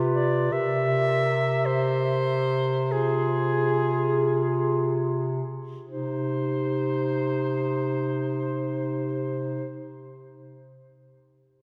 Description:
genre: classical, lyrical piece for single-reed quartet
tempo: 36-54 BPM (dotted quarters)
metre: 6/8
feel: rubato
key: C minor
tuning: A4 = 440 Hz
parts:
  - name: mellow clarinet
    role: second line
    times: 0.0-9.7 s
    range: G4 to B4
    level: -35 LUFS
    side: equal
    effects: none
  - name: mellow clarinet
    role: accompaniment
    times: 0.0-9.7 s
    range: Eb4 to G4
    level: -32 LUFS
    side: equal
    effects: none
  - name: clear bass clarinet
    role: bass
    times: 0.0-9.7 s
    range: C3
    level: -30 LUFS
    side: equal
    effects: none
  - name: clear soprano saxophone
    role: melody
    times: 0.1-9.7 s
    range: Ab4 to E5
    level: -31 LUFS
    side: equal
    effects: none
room: wet church reverb, RT60 4.0 s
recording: dark, warm production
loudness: -26 LUFS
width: mono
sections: 0.0-5.9 A section; 5.9-8.9 B section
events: slowing down 0.0-5.9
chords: 0.0 G7/C (rootless); 0.5 C7; 2.9 Fm/C; 5.9 Cm

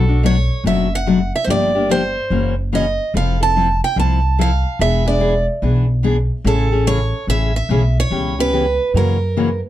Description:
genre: acoustic string swing (jazz manouche)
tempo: 145 BPM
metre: 4/4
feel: swing 64% on 8ths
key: A major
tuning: A4 = 439 Hz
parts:
  - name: picked steel-string acoustic guitar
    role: melody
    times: 0.0-9.6 s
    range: A4 to A5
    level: -20 LUFS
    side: right 3 dB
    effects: none
  - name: picked steel-string acoustic guitar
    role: accompaniment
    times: 0.0-9.5 s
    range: B2 to A4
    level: -19 LUFS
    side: left 5 dB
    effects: none
  - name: upright bass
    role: bass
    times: 0.0-9.6 s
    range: E1 to F#2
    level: -18 LUFS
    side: equal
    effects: none
room: light reverb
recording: dark, warm production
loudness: -14 LUFS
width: side -13 dB against mid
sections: 0.0-9.7 A section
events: none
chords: 0.0 Bm7; 1.5 Gm7; 2.3 F#7; 3.1 Fmaj7; 4.8 E7; 6.5 Amaj7; 8.1 C#m7b5; 8.9 F#7

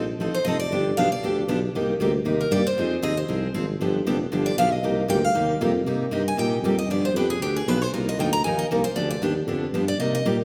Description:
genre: acoustic string swing (jazz manouche)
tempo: 232 BPM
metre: 4/4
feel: swing 56% on 8ths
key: C minor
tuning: A4 = 440 Hz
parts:
  - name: picked steel-string acoustic guitar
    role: accompaniment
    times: 0.0-10.4 s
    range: C3 to Bb4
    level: -27 LUFS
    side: equal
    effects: none
  - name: mellow tuba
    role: bass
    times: 0.0-10.4 s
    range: F1 to C3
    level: -28 LUFS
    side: equal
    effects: none
  - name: picked steel-string acoustic guitar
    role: melody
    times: 0.3-10.3 s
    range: G4 to Bb5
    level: -29 LUFS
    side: equal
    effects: none
room: wet recital hall reverb, RT60 1.6 s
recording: recorded in a church or concert hall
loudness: -24 LUFS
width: mono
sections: 0.0-5.9 A section; 5.9-10.4 A section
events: steel-string acoustic guitar solo 0.0-10.4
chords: 0.0 F7; 0.7 G7; 1.7 Cm7; 2.8 Fm7; 3.8 G7; 4.8 Cm11; 5.9 Cm7; 6.9 G7; 7.9 F7sus4; 9.0 G7

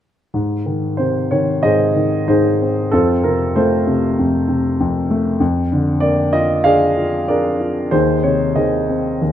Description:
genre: classical, lyrical solo piano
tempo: 95 BPM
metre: 4/4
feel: uneven beats, rubato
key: Ab major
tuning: A4 = 440 Hz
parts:
  - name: warm grand piano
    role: solo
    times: 0.3-9.3 s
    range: Eb2 to F5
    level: -14 LUFS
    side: equal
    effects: none
room: light reverb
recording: close, detailed microphones, lossy compression artefacts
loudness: -14 LUFS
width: side -10 dB against mid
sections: 0.3-9.3 A section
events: none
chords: 0.3 Ab; 2.9 F; 5.4 Bb7/F; 7.9 Ab/Eb

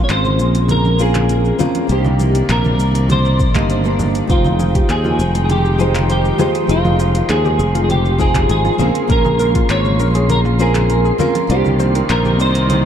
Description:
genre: sunset chillout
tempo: 100 BPM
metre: 4/4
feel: straight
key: unclear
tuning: A4 = 441 Hz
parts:
  - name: clean electric guitar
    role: melody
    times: 0.0-12.9 s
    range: F4 to Db5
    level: -20 LUFS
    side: equal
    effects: ensemble chorus, ping-pong delay
  - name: nylon-string guitar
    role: accompaniment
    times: 0.0-12.9 s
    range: Ab3 to G5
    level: -21 LUFS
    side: equal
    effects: auto-pan, tape echo
  - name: rich chamber string section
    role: sustained chords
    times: 0.0-12.9 s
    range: C3 to G5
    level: -24 LUFS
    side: equal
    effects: none
  - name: sustaining fretless electric bass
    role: bass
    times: 0.1-12.9 s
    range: F1 to Eb2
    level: -16 LUFS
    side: equal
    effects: none
  - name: deep house drum kit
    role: drums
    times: 0.1-12.8 s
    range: congas, handclaps, hi-hat, shaker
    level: -26 LUFS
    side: right 2 dB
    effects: none
  - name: congas and bongos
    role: percussion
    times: 0.3-12.8 s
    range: none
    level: -25 LUFS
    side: right 2 dB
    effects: none
  - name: electronic kick drum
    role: drums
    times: 3.4-9.7 s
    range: none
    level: -17 LUFS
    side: equal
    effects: none
  - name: soft round pluck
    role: arpeggios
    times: 4.3-12.8 s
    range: F4 to D5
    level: -24 LUFS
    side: left 1 dB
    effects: chorus, tape echo
  - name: wind-like tuned noise texture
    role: texture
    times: 4.8-12.9 s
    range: C6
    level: -29 LUFS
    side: right 1 dB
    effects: built-in reverb
room: light reverb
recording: dark, warm production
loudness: -12 LUFS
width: side -9 dB against mid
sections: 0.0-12.9 A section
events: none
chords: 0.0 Bbm9; 1.9 Cm9; 4.3 Fm9; 8.8 Bbm9; 11.5 Cm9

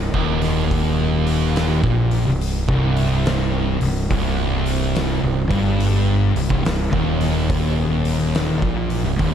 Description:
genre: stoner and doom metal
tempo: 71 BPM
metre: 4/4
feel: swing 65% on 8ths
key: C minor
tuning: A4 = 441 Hz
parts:
  - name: thick fuzz guitar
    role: riff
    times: 0.0-9.3 s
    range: C2 to Bb2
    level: -22 LUFS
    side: left 8 dB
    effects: distortion
  - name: thick fuzz guitar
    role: riff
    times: 0.0-9.3 s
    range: C2 to Bb2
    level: -22 LUFS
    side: right 8 dB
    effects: distortion
  - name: fuzz fingered electric bass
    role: bass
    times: 0.0-9.3 s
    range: C1 to Bb1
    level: -23 LUFS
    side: equal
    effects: overdrive
  - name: oversized low-tuned drum kit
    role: drums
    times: 0.1-9.3 s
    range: hi-hat, kick drum, snare drum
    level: -25 LUFS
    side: equal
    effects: none
room: studio reverb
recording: dark, warm production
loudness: -17 LUFS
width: side -9 dB against mid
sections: 0.0-9.3 A section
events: none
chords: 0.0 Cm

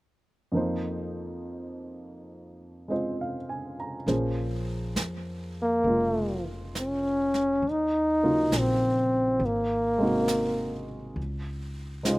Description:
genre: jazz ballad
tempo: 68 BPM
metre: 4/4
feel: swing 68% on 8ths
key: Bb minor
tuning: A4 = 440 Hz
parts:
  - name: dark baby grand piano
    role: accompaniment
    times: 0.5-12.2 s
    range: F2 to Bb5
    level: -31 LUFS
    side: right 1 dB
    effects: none
  - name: upright bass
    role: bass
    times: 4.1-12.2 s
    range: F1 to F2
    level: -34 LUFS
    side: equal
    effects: none
  - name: jazz brush drum kit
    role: drums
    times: 4.1-12.2 s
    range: brushed snare drum, hi-hat, snare drum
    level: -34 LUFS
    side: right 1 dB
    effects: none
  - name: trombone with bucket mute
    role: melody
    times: 5.6-12.2 s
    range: Ab3 to Eb4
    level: -24 LUFS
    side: equal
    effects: slapback echo
room: little or no reverb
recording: recorded outdoors, with no room sound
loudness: -25 LUFS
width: side -20 dB against mid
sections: 0.5-4.1 A section; 4.1-12.2 B section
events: none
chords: 0.5 F7sus4; 4.1 Bbm9; 7.6 Ebm7; 9.4 Ab9; 11.2 Dbmaj9

